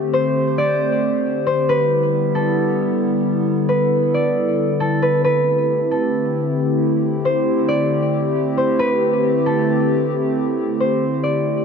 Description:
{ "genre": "hip hop", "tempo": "135 BPM", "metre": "4/4", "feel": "half-time", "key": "C major", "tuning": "A4 = 439 Hz", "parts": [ { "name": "concert harp", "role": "melody", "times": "0.0-11.6 s", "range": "A4 to D5", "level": "-20 LUFS", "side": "right 1 dB", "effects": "low-pass filter, ping-pong delay" }, { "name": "hollow soft pad", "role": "sustained chords", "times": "0.0-11.6 s", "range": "D3 to C5", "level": "-19 LUFS", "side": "left 1 dB", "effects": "chorus" } ], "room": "moderate huge ambient reverb, RT60 3.8 s", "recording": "none", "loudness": "-16 LUFS", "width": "side -6 dB against mid", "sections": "0.0-11.6 A section", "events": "none", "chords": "0.0 D7sus4; 1.7 Em7; 5.2 C69" }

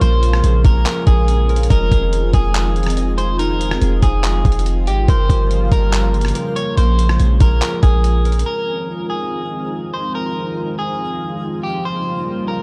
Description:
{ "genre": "hip hop, atmospheric cloud-rap", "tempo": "142 BPM", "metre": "4/4", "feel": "half-time", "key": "F minor", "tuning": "A4 = 439 Hz", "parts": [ { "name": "electric guitar at the edge of break-up", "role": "melody", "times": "0.0-12.6 s", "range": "G4 to Db5", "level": "-26 LUFS", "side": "equal", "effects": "tape echo" }, { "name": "dark analog pad", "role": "sustained chords", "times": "0.0-12.6 s", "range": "Db3 to F4", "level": "-27 LUFS", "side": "equal", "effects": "chorus, phaser, sidechain pumping" }, { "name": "concert harp", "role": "arpeggios", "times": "0.0-10.6 s", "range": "Bb3 to Eb5", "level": "-29 LUFS", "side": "equal", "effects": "tape echo" }, { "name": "warm 808-style bass", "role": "bass", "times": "0.0-8.4 s", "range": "F1 to Bb1", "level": "-18 LUFS", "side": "equal", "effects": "none" }, { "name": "lo-fi sampler-style drum kit", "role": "drums", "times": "0.0-8.5 s", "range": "handclaps, hi-hat, kick drum, rim click", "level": "-20 LUFS", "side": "equal", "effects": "none" }, { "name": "twinkling granular texture", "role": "texture", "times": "0.7-12.6 s", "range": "Bb3 to Ab5", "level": "-38 LUFS", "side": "equal", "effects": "none" } ], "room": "digital ambience", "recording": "dark, warm production", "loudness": "-17 LUFS", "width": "mono", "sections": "0.0-8.5 A section; 8.5-12.6 B section", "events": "none", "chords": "0.0 Bbm7; 1.7 Fm7; 5.1 Gm7b5; 6.8 Bbm7; 8.5 Fm7; 11.8 Gm7b5" }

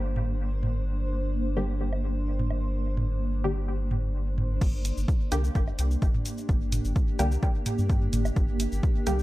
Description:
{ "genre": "dub techno", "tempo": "128 BPM", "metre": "4/4", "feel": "straight", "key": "G minor", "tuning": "A4 = 440 Hz", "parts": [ { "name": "granular cloud pad", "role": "sustained chords", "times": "0.0-9.2 s", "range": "Bb3 to C5", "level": "-34 LUFS", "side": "right 1 dB", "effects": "built-in reverb, sidechain pumping" }, { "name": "warm sub bass", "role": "bass", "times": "0.0-9.2 s", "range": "G1 to G2", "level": "-28 LUFS", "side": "equal", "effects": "sidechain pumping" }, { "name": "electronic toms and woodblock", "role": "percussion", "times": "0.2-8.3 s", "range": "none", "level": "-33 LUFS", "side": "right 1 dB", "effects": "sidechain pumping on toms, sidechain pumping on perc" }, { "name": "filtered dub chord stab", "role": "stabs", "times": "1.6-9.1 s", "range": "D3 to G4", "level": "-33 LUFS", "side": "left 1 dB", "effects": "chorus, phaser, cassette tape, dub echo" }, { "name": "electronic kick drum", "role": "drums", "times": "4.6-8.9 s", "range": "none", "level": "-25 LUFS", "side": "equal", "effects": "none" }, { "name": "punchy analog drum machine", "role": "drums", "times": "4.6-9.2 s", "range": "cabasa, crash cymbal, hi-hat", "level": "-38 LUFS", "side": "equal", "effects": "none" } ], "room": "little or no reverb", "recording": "dark, warm production", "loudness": "-25 LUFS", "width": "side -17 dB against mid", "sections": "0.0-4.6 A section; 4.6-9.2 B section", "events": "filter sweep on ambient pad 0.0-4.6", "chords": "0.0 Gm" }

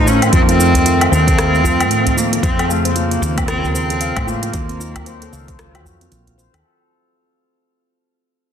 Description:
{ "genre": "organic downtempo", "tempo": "114 BPM", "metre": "4/4", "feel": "swing 60% on 16ths", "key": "unclear", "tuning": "A4 = 436 Hz", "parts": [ { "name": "rich cello", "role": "melody", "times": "0.0-6.1 s", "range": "A3 to Db4", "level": "-19 LUFS", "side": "equal", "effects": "vintage 12-bit sampler grit, digital delay" }, { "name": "warm analog pad", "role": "sustained chords", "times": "0.0-6.6 s", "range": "Db3 to Bb4", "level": "-22 LUFS", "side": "equal", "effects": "chorus, vintage 12-bit sampler grit, sidechain pumping" }, { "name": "handpan", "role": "arpeggios", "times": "0.0-6.6 s", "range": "C4 to F5", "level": "-22 LUFS", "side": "right 1 dB", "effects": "digital delay" }, { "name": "woody fretless electric bass", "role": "bass", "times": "0.0-6.6 s", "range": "Bb1 to A2", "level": "-19 LUFS", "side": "equal", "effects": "sidechain pumping" }, { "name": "wind-like tuned noise texture", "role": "texture", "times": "0.0-6.7 s", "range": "F4 to F5", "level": "-31 LUFS", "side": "left 1 dB", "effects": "none" }, { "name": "organic electronic drum kit", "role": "drums", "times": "0.1-6.6 s", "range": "hi-hat, rim click, shaker, woodblock", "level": "-21 LUFS", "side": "equal", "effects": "none" }, { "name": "electronic kick drum", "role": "drums", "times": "0.3-5.6 s", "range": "none", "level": "-18 LUFS", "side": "equal", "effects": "none" }, { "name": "udu", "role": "percussion", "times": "0.7-6.4 s", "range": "none", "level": "-23 LUFS", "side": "equal", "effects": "none" } ], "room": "light reverb, digital ambience", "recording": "dense, heavily limited modern master", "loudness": "-13 LUFS", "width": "side -8 dB against mid", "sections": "0.0-6.6 A section", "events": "fade-out 1.0-6.6", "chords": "0.0 F7; 2.4 Bbmadd9; 4.5 Ebm7" }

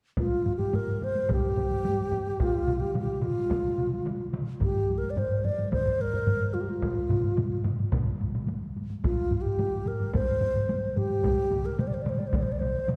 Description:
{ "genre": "japanese traditional, taiko drum ensemble", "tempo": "108 BPM", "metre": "4/4", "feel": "straight", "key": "C suspended pentatonic", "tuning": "A4 = 440 Hz", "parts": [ { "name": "mellow wooden-headed alto flute", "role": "melody", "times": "0.2-12.9 s", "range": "F4 to D5", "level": "-32 LUFS", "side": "equal", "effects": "none" }, { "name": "taiko ensemble", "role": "percussion", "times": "0.2-13.0 s", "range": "none", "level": "-38 LUFS", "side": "equal", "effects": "none" }, { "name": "taiko ensemble", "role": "percussion", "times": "0.2-12.5 s", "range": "none", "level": "-35 LUFS", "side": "equal", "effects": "none" }, { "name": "taiko ensemble", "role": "percussion", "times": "0.5-11.1 s", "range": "none", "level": "-33 LUFS", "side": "equal", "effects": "none" }, { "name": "taiko ensemble", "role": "percussion", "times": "2.7-13.0 s", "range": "none", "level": "-35 LUFS", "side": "equal", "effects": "none" } ], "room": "wet concert hall reverb, RT60 2.4 s", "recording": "recorded in a church or concert hall", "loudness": "-28 LUFS", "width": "mono", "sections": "0.2-13.0 A section", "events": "none", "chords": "none" }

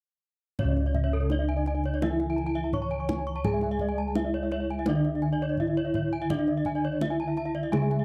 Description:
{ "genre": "Balinese gamelan", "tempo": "84 BPM", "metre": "4/4", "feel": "straight", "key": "C# pelog", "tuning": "A4 = 442 Hz", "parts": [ { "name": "gamelan-type bronze metallophone", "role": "melody", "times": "0.6-8.0 s", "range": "C#4 to C#5", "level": "-33 LUFS", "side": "equal", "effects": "none" }, { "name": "gamelan-type bronze metallophone", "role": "accompaniment", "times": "0.6-8.0 s", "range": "C#3 to G#3", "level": "-37 LUFS", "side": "equal", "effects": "none" }, { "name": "gamelan-type bronze metallophone", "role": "arpeggios", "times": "0.6-8.0 s", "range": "A4 to C#6", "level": "-38 LUFS", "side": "equal", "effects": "slapback echo" }, { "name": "gamelan-type bossed gongs", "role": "bass", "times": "0.6-8.0 s", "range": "C#2 to G#4", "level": "-32 LUFS", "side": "equal", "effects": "none" }, { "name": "kendang", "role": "percussion", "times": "0.6-8.0 s", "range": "none", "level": "-36 LUFS", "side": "equal", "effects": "none" }, { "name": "gamelan-type bronze metallophone", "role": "arpeggios", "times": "0.7-8.0 s", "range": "C#5 to C#6", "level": "-39 LUFS", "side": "equal", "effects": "none" } ], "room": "small room reverb", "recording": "dry, close 1970s-style studio recording", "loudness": "-28 LUFS", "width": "mono", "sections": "0.6-8.0 A section", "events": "none", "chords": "none" }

